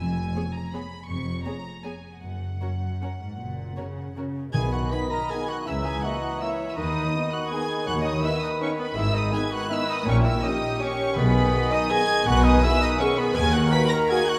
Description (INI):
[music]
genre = classical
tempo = 144-176 BPM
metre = 3/4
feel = rubato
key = B major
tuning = A4 = 440 Hz
[part]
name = rich studio violin section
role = melody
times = 0.0-14.4 s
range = F#5 to B6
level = -34 LUFS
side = equal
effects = none
[part]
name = dark studio double bass section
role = bass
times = 0.0-13.7 s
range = E#1 to D#2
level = -31 LUFS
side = equal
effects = none
[part]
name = warm studio cello section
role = bass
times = 0.0-13.7 s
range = D#2 to D#3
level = -32 LUFS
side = equal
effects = none
[part]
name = warm studio violin section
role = second line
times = 0.4-14.4 s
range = G#4 to B5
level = -35 LUFS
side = equal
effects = none
[part]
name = warm studio viola section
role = accompaniment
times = 0.4-14.4 s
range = B3 to E5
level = -35 LUFS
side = equal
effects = none
[part]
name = dark cor anglais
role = second line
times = 4.5-14.4 s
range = B3 to B4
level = -32 LUFS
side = equal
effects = none
[part]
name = mellow hollow small flute group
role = second line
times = 4.5-14.4 s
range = F#5 to B5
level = -35 LUFS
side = equal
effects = none
[part]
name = mellow bassoon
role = accompaniment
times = 4.5-14.4 s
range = D#3 to E3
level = -34 LUFS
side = equal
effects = none
[part]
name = timpani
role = percussion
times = 4.5-5.1, 11.2-11.7 s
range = B2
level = -34 LUFS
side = equal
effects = none
[part]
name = warm French horn section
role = sustained chords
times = 4.9-14.2 s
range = A#3 to G#4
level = -35 LUFS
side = equal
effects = none
[sound]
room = wet concert hall reverb, RT60 2.2 s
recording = none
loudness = -24 LUFS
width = mono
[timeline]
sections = 0.0-4.5 A section; 4.5-14.4 B section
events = none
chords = 0.0 C#7/E#; 2.2 F#; 4.5 B; 5.7 F#7/C#; 6.8 B/D#; 9.0 G#m; 10.1 D#7/A#; 11.2 G#m/B; 13.4 D#m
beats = 0.35 0.73 | 1.09 1.46 1.84 | 2.22 2.61 3.02 | 3.40 3.78 4.17 | 4.55 4.92 5.31 | 5.68 6.04 6.42 | 6.78 7.14 7.52 | 7.87 8.23 8.61 | 8.97 9.33 9.71 | 10.07 10.44 10.82 | 11.18 11.54 11.91 | 12.27 12.63 13.01 | 13.36 13.72 14.11